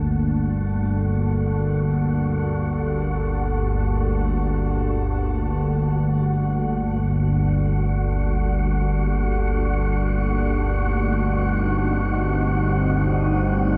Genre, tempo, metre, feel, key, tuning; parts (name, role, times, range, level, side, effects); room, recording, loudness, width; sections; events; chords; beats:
dark ambient drone; free time; G harmonic minor; A4 = 440 Hz
deep dark ambient pad; sustained chords; 0.0-13.8 s; G3 to A5; -30 LUFS; equal; chorus, built-in reverb, shimmer reverb
organ-like drone; drone; 0.0-13.8 s; G1 to D2; -23 LUFS; equal; ensemble chorus, built-in reverb
wind-like tuned noise texture; texture; 0.0-13.8 s; F#4 to F#5; -33 LUFS; equal; built-in reverb, shimmer reverb
wet cathedral reverb, RT60 5.4 s; dark, warm production; -22 LUFS; mono
0.0-13.8 A section
fade-in on ambient pad 0.0-13.8; fade-in on synth texture 0.0-13.8; filter sweep on synth drone 0.0-13.8
0.0 Gmadd9; 8.1 Cmadd9/G
free time